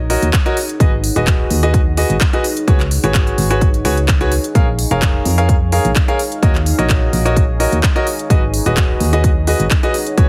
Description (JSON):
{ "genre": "piano house", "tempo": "128 BPM", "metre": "4/4", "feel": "straight", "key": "unclear", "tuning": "A4 = 440 Hz", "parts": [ { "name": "solid FM bass", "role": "bass", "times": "0.0-10.3 s", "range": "Eb1 to F2", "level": "-20 LUFS", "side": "equal", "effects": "sidechain pumping" }, { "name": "deep dark ambient pad", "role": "texture", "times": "0.0-10.3 s", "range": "Eb4 to Gb5", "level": "-28 LUFS", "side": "equal", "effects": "chorus, built-in reverb, sidechain pumping" }, { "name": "bright concert grand piano", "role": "riff", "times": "0.1-10.3 s", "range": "Gb4 to F5", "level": "-21 LUFS", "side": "equal", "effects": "vintage 12-bit sampler grit, sidechain pumping, delay" }, { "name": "house drum kit", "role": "drums", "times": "0.1-10.3 s", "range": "handclaps, hi-hat", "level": "-24 LUFS", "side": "equal", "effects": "small room ambience" }, { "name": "electronic kick drum", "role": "drums", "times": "0.3-10.3 s", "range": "none", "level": "-17 LUFS", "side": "equal", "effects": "small room ambience" } ], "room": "little or no reverb", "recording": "heavily compressed radio sound, multiband compression", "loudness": "-15 LUFS", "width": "mono", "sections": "0.0-10.3 A section", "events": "none", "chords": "0.0 Ebm7; 0.6 Abm7; 2.4 Db7sus4; 4.6 Bbm7; 6.2 Ebm7; 8.1 Abm7" }